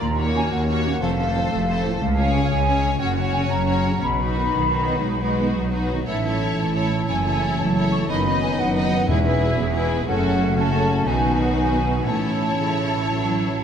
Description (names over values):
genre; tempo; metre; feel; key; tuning
cinematic; 120 BPM (dotted quarters); 12/8; straight; unclear; A4 = 441 Hz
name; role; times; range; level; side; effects
mellow flute section; second line; 0.0-13.6 s; E5 to C#6; -26 LUFS; equal; none
concert harp; arpeggios; 0.0-13.6 s; E2 to C#5; -28 LUFS; left 7 dB; none
rich studio double bass section; bass; 0.0-13.6 s; E1 to D#2; -26 LUFS; right 2 dB; none
rich symphonic cello section; bass; 0.0-13.6 s; C#2 to G#3; -26 LUFS; right 2 dB; none
rich symphonic violin section; melody; 0.2-13.6 s; A4 to D#5; -30 LUFS; left 2 dB; none
rich studio violin section; second line; 0.2-13.6 s; F#4 to B4; -31 LUFS; left 2 dB; none
rich symphonic viola section; accompaniment; 0.2-13.6 s; A3 to E4; -29 LUFS; left 1 dB; none
dark trombone section; sustained chords; 0.3-13.6 s; A2 to C#4; -28 LUFS; right 2 dB; none
timpani; percussion; 9.1-9.6 s; E2; -26 LUFS; left 2 dB; none
room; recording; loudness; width
wet scoring stage reverb, RT60 2.2 s; none; -19 LUFS; side -8 dB against mid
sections
0.0-13.6 A section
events
none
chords
0.0 D#m7; 1.0 F; 2.0 C#; 3.0 F#; 4.0 B; 6.1 A; 7.1 F#m7; 8.1 B/F#; 9.1 E; 10.1 F#m; 11.1 B; 12.1 A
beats
| 0.02 0.52 1.02 1.52 | 2.01 2.51 3.00 3.51 | 4.02 4.54 5.05 5.56 | 6.07 6.58 7.09 7.59 | 8.09 8.59 9.09 9.59 | 10.09 10.58 11.07 11.58 | 12.09 12.60 13.12